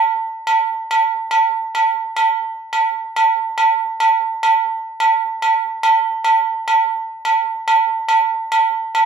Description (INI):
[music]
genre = highlife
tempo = 106 BPM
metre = 4/4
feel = straight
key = none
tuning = none
[part]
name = agogo bells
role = percussion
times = 0.5-9.1 s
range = none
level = -15 LUFS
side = right 3 dB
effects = none
[sound]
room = moderate studio reverb, RT60 0.7 s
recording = band playing live in one room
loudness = -15 LUFS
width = side -6 dB against mid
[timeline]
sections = 0.0-9.1 A section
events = none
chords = none